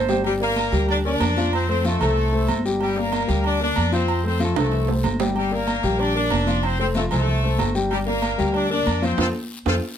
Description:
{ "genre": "latin, salsa", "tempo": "188 BPM", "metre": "4/4", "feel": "straight", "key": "G minor", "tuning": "A4 = 439 Hz", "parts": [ { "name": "bright horn section", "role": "melody", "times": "0.0-9.7 s", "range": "G3 to D5", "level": "-25 LUFS", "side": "left 1 dB", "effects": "plate reverb" }, { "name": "dark concert grand piano", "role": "accompaniment", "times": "0.0-9.8 s", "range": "F3 to G5", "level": "-24 LUFS", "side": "left 4 dB", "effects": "none" }, { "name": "upright bass", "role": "bass", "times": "0.0-9.8 s", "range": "F1 to F2", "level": "-24 LUFS", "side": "right 1 dB", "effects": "none" }, { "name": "congas", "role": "percussion", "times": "0.1-9.7 s", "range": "none", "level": "-31 LUFS", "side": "equal", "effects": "none" }, { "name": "guiro", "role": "percussion", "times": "0.1-9.7 s", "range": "none", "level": "-38 LUFS", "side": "left 5 dB", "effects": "none" }, { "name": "timbales and agogo bells", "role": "percussion", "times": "0.1-9.7 s", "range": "none", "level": "-29 LUFS", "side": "right 9 dB", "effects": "none" } ], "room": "moderate studio reverb, RT60 0.6 s", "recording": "none", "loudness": "-19 LUFS", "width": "side -9 dB against mid", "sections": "0.2-10.0 A section", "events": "drum fill 0.0, 4.6-5.4, 9.5-10.0; band accent 9.2-10.0", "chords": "0.2 Gm; 1.5 F; 2.8 Gm; 4.1 F; 5.4 Gm; 6.6 F; 7.9 Gm; 9.2 F" }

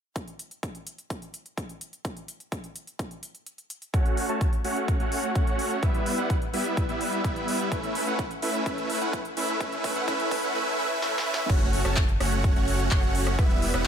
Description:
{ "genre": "EDM, festival progressive house", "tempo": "127 BPM", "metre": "4/4", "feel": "straight", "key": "unclear", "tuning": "A4 = 440 Hz", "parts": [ { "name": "big-room dance drum kit", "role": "drums", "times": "0.2-13.8 s", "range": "crash cymbal, handclaps, hi-hat, rim click, snare drum", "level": "-34 LUFS", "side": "equal", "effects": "high-pass filter on hats, high-pass filter on snare, high-pass filter on cymbals, high-pass filter on room" }, { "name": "electronic kick drum", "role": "drums", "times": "0.2-13.5 s", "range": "none", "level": "-26 LUFS", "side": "equal", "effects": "high-pass filter on kick, high-pass filter on room" }, { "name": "supersaw chords", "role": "riff", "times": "3.9-13.9 s", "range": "G3 to A5", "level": "-26 LUFS", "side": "right 1 dB", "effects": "sidechain pumping, low-pass filter, ping-pong delay" }, { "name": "saturated sub bass", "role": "bass", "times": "11.5-13.9 s", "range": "E1 to F#1", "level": "-28 LUFS", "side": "equal", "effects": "sidechain pumping" } ], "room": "light reverb", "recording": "high-pass filter", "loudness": "-24 LUFS", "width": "side -8 dB against mid", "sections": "0.2-3.9 A section; 3.9-11.5 B section; 11.5-13.9 C section", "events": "break 3.5-3.9; build-up 3.9-11.5; filter sweep on supersaw synth 3.9-11.5; filter sweep 3.9-11.5; drum fill 7.7-10.6, 11.0-11.5; drop 11.5-13.9", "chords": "0.2 N.C.; 3.9 F#m; 5.8 Em; 7.7 Aadd9; 11.5 F#m" }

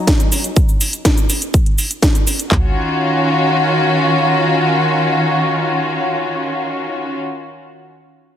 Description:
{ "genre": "progressive house", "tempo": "123 BPM", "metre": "4/4", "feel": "straight", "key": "Eb minor", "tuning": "A4 = 442 Hz", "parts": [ { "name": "rich symphonic string section", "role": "sustained chords", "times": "0.0-7.2 s", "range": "Eb3 to Gb4", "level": "-15 LUFS", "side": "equal", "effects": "sidechain pumping, low-pass filter" }, { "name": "big-room dance drum kit", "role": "drums", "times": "0.1-2.6 s", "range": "handclaps, kick drum, toms", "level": "-14 LUFS", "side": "equal", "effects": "none" }, { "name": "house drum kit", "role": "drums", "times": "0.1-2.5 s", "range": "cabasa, hi-hat, snare drum", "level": "-18 LUFS", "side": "equal", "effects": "overdrive" } ], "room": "moderate scoring stage reverb, RT60 2.0 s", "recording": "heavily compressed radio sound, multiband compression", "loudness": "-13 LUFS", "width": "side -10 dB against mid", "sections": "0.0-2.5 A section; 2.5-6.4 B section", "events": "none", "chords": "0.0 Ebm7/Gb; 0.6 N.C.; 2.5 Ebm9" }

